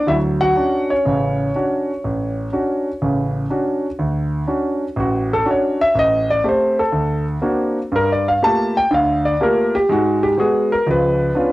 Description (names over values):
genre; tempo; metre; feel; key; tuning
solo jazz; 122 BPM; 4/4; swing 68% on 8ths; D major; A4 = 444 Hz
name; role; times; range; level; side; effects
warm concert grand piano; solo; 0.0-11.5 s; A1 to A5; -16 LUFS; equal; cassette tape
room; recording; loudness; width
light reverb; home recording on cassette; -16 LUFS; side -17 dB against mid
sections
0.0-4.0 A section; 4.0-11.5 B section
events
grand piano solo 4.0-11.5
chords
0.1 Dmaj7; 6.0 Am7b5; 6.9 D7b13; 7.9 Gm9; 9.9 G#m9; 10.9 C#7b9